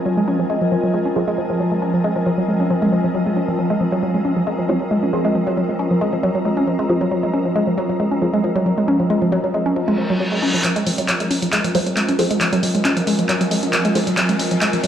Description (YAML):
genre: driving peak-time techno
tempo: 136 BPM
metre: 4/4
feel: straight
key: F minor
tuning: A4 = 444 Hz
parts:
  - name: swarming drone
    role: drone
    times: 0.0-14.9 s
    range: F3 to C4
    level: -24 LUFS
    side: right 1 dB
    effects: built-in reverb
  - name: downlifter, reverse cymbal and riser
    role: sound effects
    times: 0.0-0.1, 10.0-14.9 s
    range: none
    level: -29 LUFS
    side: equal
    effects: none
  - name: ethereal airy pad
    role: texture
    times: 0.0-14.9 s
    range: F4 to Bb5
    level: -25 LUFS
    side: left 1 dB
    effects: ensemble chorus, built-in reverb
  - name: woody wave-folded pluck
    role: riff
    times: 0.1-14.9 s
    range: F3 to Db4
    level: -19 LUFS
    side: equal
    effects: chorus, tape echo
  - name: filtered dub chord stab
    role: stabs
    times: 1.2, 4.7-8.3, 11.7-14.1 s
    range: F4 to C5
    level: -25 LUFS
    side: right 1 dB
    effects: phaser, lush chorus, dub echo
  - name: techno drum kit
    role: drums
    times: 10.6-14.9 s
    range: handclaps, hi-hat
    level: -21 LUFS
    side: equal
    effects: low-pass filter on hats, low-pass filter on toms, low-pass filter on cymbals, low-pass filter on snare, low-pass filter on room
  - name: detuned saw bass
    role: bass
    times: 10.9-14.8 s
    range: F1 to F2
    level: -38 LUFS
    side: equal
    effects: none
room: moderate huge ambient reverb, RT60 8.6 s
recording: played on a big sound system in a bare room, large studio reverb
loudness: -16 LUFS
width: side -9 dB against mid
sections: 0.0-10.6 A section; 10.6-14.9 B section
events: reverse cymbal 10.0-10.6; build-up 10.6-14.9; drum fill 10.6-14.9; filter sweep on synth arpeggio sound 10.6-14.9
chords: 0.0 Fm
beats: | 0.06 0.50 0.94 1.38 | 1.82 2.26 2.70 3.15 | 3.59 4.03 4.47 4.91 | 5.35 5.79 6.23 6.67 | 7.12 7.56 8.00 8.44 | 8.88 9.32 9.76 10.20 | 10.64 11.09 11.53 11.97 | 12.41 12.85 13.29 13.73 | 14.18 14.62